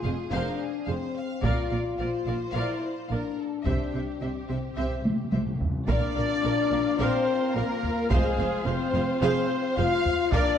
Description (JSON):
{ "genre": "cinematic, epic orchestral film score", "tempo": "108 BPM", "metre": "4/4", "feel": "straight", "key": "unclear", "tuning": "A4 = 440 Hz", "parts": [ { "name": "warm symphonic violin section", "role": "melody", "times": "0.0-10.6 s", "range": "Ab4 to F5", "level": "-34 LUFS", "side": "left 2 dB", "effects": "none" }, { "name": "warm symphonic violin section", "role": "second line", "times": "0.0-10.6 s", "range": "G4 to F5", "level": "-38 LUFS", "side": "left 3 dB", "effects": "none" }, { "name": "rich symphonic viola section", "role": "accompaniment", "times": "0.0-10.6 s", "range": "G4 to D5", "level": "-34 LUFS", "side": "right 3 dB", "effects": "none" }, { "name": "mellow French horn section", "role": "sustained chords", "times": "0.0-10.6 s", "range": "Ab3 to F4", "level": "-29 LUFS", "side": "left 5 dB", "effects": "none" }, { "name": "warm symphonic double bass section", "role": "bass", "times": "0.0-10.4 s", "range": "F1 to C2", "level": "-33 LUFS", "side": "right 3 dB", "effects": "none" }, { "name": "rich symphonic cello section", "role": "bass", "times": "0.1-10.4 s", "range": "F2 to C3", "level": "-33 LUFS", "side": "right 2 dB", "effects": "none" }, { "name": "taiko ensemble", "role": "drums", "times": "1.4-10.6 s", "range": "none", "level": "-28 LUFS", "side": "right 1 dB", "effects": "none" }, { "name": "timpani", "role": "percussion", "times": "3.7-5.8 s", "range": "C3", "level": "-36 LUFS", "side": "left 1 dB", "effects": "none" }, { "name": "warm studio string section", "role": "sustained chords", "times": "5.9-10.6 s", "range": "D4 to F5", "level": "-36 LUFS", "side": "left 2 dB", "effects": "none" }, { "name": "mellow trumpet", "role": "stabs", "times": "5.9-10.6 s", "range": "Ab4 to F5", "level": "-32 LUFS", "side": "right 2 dB", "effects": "none" } ], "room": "wet scoring stage reverb, RT60 1.5 s", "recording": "dark, warm production", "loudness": "-24 LUFS", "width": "side -8 dB against mid", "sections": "0.0-5.9 A section; 5.9-10.6 A section", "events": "timpani fill 3.7-5.9; drum fill 5.1-5.9", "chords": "0.0 Fm; 1.4 Bb; 3.7 C; 5.9 Bb; 8.1 Fm" }